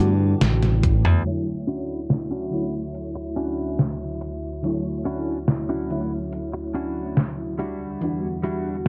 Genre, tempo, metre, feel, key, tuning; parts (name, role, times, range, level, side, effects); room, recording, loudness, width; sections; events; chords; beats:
vaporwave; 71 BPM; 4/4; straight; D major; A4 = 441 Hz
mellow FM electric piano; accompaniment; 0.0-8.9 s; D3 to C#5; -30 LUFS; equal; ensemble chorus, analog delay
warbly tape-like pad; sustained chords; 0.0-8.9 s; D2 to A5; -38 LUFS; equal; chorus, built-in reverb, vintage 12-bit sampler grit
modern bright fingered electric bass; bass; 0.0-1.2 s; A1 to G2; -22 LUFS; equal
detuned 8-bit digital drum machine; drums; 0.4-8.9 s; hi-hat, snare drum, toms; -24 LUFS; equal
electronic kick drum; drums; 0.8-1.0 s; -24 LUFS; equal
direct-recorded clean electric guitar; riff; 1.7-8.8 s; G3 to F#4; -32 LUFS; equal; analog chorus, vintage 12-bit sampler grit, low-pass filter, analog delay
light reverb; dark, warm production, low-pass filter; -25 LUFS; mono
0.0-1.3 A section; 1.3-8.9 B section
drum fill 0.4-1.3; filter sweep on clean electric guitar 1.3-8.9; filter sweep 1.3-8.9
0.0 Em9; 1.3 Dmaj9; 7.6 Em9
0.41 | 1.26 2.10 2.95 3.79 | 4.64 5.48 6.33 7.17 | 8.02 8.86